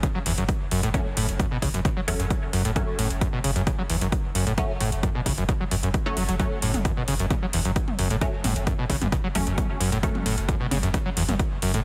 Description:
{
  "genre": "driving peak-time techno",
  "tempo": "132 BPM",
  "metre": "4/4",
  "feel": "straight",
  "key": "F# minor",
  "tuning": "A4 = 440 Hz",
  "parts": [
    { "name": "screaming distorted acid line", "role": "riff", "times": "0.0-11.8 s", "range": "E2 to F#3", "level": "-29 LUFS", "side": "equal", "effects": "distortion, analog chorus, sidechain pumping, digital delay" },
    { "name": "filtered dub chord stab", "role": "stabs", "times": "0.0-11.8 s", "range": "F#3 to C#4", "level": "-35 LUFS", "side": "equal", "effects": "phaser, ensemble chorus, sidechain pumping, digital delay" },
    { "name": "saturated sub bass", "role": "bass", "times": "0.0-11.8 s", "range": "F#1", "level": "-32 LUFS", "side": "equal", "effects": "tube saturation, sidechain pumping, low-pass filter" },
    { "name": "electronic kick drum", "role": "drums", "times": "0.0-11.5 s", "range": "none", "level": "-28 LUFS", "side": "equal", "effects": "none" },
    { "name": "techno drum kit", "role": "drums", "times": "0.0-11.8 s", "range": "hi-hat, toms", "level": "-33 LUFS", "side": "equal", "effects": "none" }
  ],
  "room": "light reverb, digital ambience",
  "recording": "heavily compressed radio sound, multiband compression",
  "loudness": "-25 LUFS",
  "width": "mono",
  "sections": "0.0-11.8 A section",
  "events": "none",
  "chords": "0.0 F#m"
}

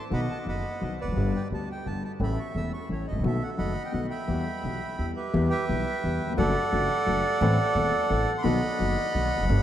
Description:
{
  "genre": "tango",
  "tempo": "173 BPM",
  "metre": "3/4",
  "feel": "rubato",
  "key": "E minor",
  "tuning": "A4 = 437 Hz",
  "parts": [
    { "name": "bandoneon", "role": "melody", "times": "0.0-9.6 s", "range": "G4 to E6", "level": "-28 LUFS", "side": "right 2 dB", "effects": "none" },
    { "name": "dark grand piano", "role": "accompaniment", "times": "0.1-9.6 s", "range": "E1 to A4", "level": "-29 LUFS", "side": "left 3 dB", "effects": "none" },
    { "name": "upright bass", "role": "bass", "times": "0.1-9.6 s", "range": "E1 to E2", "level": "-29 LUFS", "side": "right 1 dB", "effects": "none" }
  ],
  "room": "wet huge ambient reverb, RT60 8.1 s",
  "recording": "in a vast, echoing space",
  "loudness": "-24 LUFS",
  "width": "side -11 dB against mid",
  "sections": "0.0-5.3 A section; 5.3-9.6 B section",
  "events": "none",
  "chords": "0.1 B; 1.2 G; 2.2 A; 3.2 B7; 4.3 Em; 6.4 D/F#; 7.4 Am; 8.4 B"
}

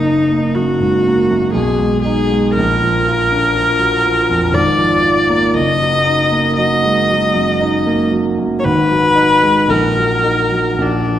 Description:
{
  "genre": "classical, romantic duo for viola and grand piano",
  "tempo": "50-61 BPM",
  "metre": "3/4",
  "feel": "rubato",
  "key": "Eb minor",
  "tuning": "A4 = 436 Hz",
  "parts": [
    { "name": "clear viola", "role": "melody", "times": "0.0-11.2 s", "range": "D4 to Eb5", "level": "-14 LUFS", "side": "left 1 dB", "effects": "none" },
    { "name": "warm concert grand piano", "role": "accompaniment", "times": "0.0-11.2 s", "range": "Gb1 to F4", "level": "-15 LUFS", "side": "right 1 dB", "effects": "none" }
  ],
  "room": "wet scoring stage reverb, RT60 1.5 s",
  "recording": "recorded in a church or concert hall, vinyl crackle",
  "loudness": "-12 LUFS",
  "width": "side -11 dB against mid",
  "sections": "0.0-11.2 A section",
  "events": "none",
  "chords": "0.0 Ebm/Gb; 1.5 Abm/Cb; 2.6 Bb; 4.6 Bb7/Ab; 5.6 Ebm/Gb; 8.7 Abm7; 9.7 Ebm/Bb"
}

